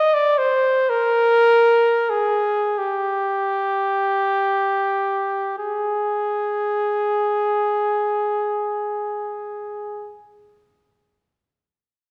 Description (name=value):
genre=classical, free, expressive piece for unaccompanied trumpet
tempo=17-40 BPM (dotted quarters)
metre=6/8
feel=rubato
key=unclear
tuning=A4 = 440 Hz
part: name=warm trumpet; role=solo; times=0.0-10.2 s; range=G4 to D#5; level=-21 LUFS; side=equal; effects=none
room=wet recital hall reverb, RT60 1.5 s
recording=none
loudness=-20 LUFS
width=mono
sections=0.0-5.6 A section; 5.6-10.0 B section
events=slowing down 0.0-5.6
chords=none